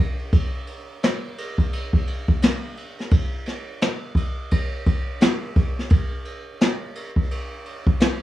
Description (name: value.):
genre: hip hop.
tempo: 86 BPM.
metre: 4/4.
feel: swing 61% on 16ths.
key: none.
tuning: none.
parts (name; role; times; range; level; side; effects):
jazz brush drum kit; drums; 0.2-8.2 s; hi-hat, kick drum, ride cymbal, snare drum; -20 LUFS; equal; none.
room: light reverb.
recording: worn, warbling old tape, cassette tape, warbly pitch drift, small room ambience.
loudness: -20 LUFS.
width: side -14 dB against mid.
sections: 0.0-8.2 A section.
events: none.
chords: none.